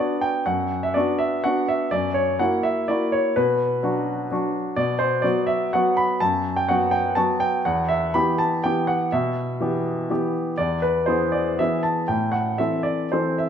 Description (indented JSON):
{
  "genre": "classical, piano waltz",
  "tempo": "109-132 BPM",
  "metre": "3/4",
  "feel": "rubato",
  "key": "unclear",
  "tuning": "A4 = 439 Hz",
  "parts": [
    { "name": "clear baby grand piano", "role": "solo", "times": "0.0-13.5 s", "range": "E2 to B5", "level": "-20 LUFS", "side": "equal", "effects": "none" }
  ],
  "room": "wet recital hall reverb, RT60 1.4 s",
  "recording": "minimal, uncompressed stereo recording",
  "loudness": "-20 LUFS",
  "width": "side -8 dB against mid",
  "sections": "0.0-13.5 A section",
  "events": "none",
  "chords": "0.0 Bm; 1.9 F#7; 3.4 Bm; 4.8 B5; 7.7 Em; 10.6 E; 12.1 Am"
}